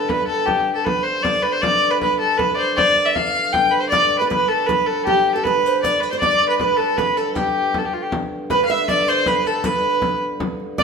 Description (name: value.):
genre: medieval dance.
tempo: 157 BPM.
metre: 3/4.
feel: straight.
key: G mixolydian.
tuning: A4 = 439 Hz.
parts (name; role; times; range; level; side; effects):
rich fiddle; melody; 0.0-10.8 s; F4 to G5; -17 LUFS; left 1 dB; none.
hand-pumped harmonium; drone; 0.0-10.8 s; G2 to D3; -29 LUFS; equal; none.
frame drum; percussion; 0.1-10.8 s; none; -28 LUFS; left 2 dB; none.
nylon-string guitar; second line; 3.9-10.8 s; G4 to E5; -24 LUFS; right 5 dB; none.
room: wet stone room reverb, RT60 1.1 s.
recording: band playing live in one room.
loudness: -16 LUFS.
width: side -5 dB against mid.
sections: 0.0-8.5 A section; 8.5-10.8 B section.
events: none.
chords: none.